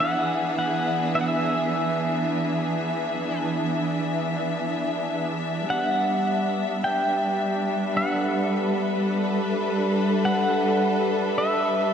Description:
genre	ambient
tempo	53 BPM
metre	4/4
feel	straight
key	unclear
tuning	A4 = 440 Hz
part	pedal steel guitar	melody	0.0-11.9 s	E5 to G5	-26 LUFS	equal	tape echo
part	rich symphonic string section	sustained chords	0.0-11.9 s	E3 to E5	-23 LUFS	equal	none
room	wet lush hall reverb, RT60 2.7 s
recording	dark, warm production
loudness	-22 LUFS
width	side -8 dB against mid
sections	0.0-11.9 A section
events	none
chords	0.0 E7; 5.7 Gmaj7

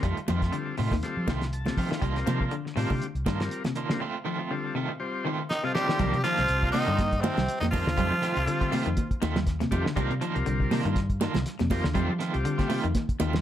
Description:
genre	afrobeat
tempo	121 BPM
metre	4/4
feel	swing 56% on 16ths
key	C dorian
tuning	A4 = 438 Hz
part	combo organ	accompaniment	0.0-12.8 s	G3 to A5	-35 LUFS	left 3 dB	none
part	electric guitar at the edge of break-up	arpeggios	0.0-13.4 s	Bb2 to G3	-34 LUFS	left 6 dB	slapback echo
part	electric guitar at the edge of break-up	stabs	0.0-13.4 s	Eb3 to F4	-33 LUFS	right 5 dB	tremolo
part	vintage muted fingered electric bass	bass	0.0-13.4 s	C2 to F3	-30 LUFS	equal	none
part	cloth-damped thuddy drum kit	drums	0.0-13.4 s	hi-hat, kick drum, snare drum	-31 LUFS	equal	none
part	congas	percussion	0.3-13.4 s	none	-32 LUFS	right 4 dB	none
part	raspy tenor saxophone	melody	5.5-9.2 s	C4 to G4	-28 LUFS	equal	slapback echo
part	brilliant trombone	second line	5.5-9.2 s	C3 to G3	-34 LUFS	right 1 dB	none
room	light reverb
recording	none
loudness	-25 LUFS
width	side -11 dB against mid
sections	0.0-6.0 A section; 6.0-13.4 B section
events	transistor combo organ fill 1.3-2.0; drum fill 5.5-6.0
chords	0.0 F7; 2.0 Cm11; 4.0 F7; 6.0 Cm11; 8.0 F7; 10.0 Cm11; 12.0 F7

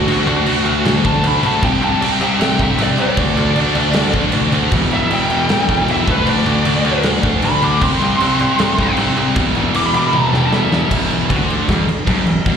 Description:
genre	hard rock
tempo	155 BPM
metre	4/4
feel	straight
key	unclear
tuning	A4 = 441 Hz
part	bluesy overdriven lead guitar	melody	0.0-10.9 s	F#4 to D6	-20 LUFS	equal	distortion, slapback echo, tape echo
part	high-gain distorted guitar	riff	0.0-12.6 s	E2 to D4	-20 LUFS	right 14 dB	distortion
part	sludgy distorted guitar	riff	0.0-12.6 s	E2 to D4	-19 LUFS	left 7 dB	overdrive
part	bright baby grand piano	bass	0.0-12.6 s	E1 to D2	-20 LUFS	equal	none
part	big rock drum kit	drums	0.1-12.5 s	crash cymbal, kick drum, snare drum, toms	-19 LUFS	right 1 dB	none
room	light reverb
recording	live gig heard through the venue's PA, recital hall reverb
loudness	-13 LUFS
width	side -7 dB against mid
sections	0.0-10.9 A section; 10.9-12.6 B section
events	lead electric guitar solo 0.0-10.9; drum fill 10.1-10.9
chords	0.0 D; 1.6 C5; 3.2 D5; 4.7 Em; 6.1 D5; 7.8 C5; 9.4 E5; 10.9 Dadd9/E

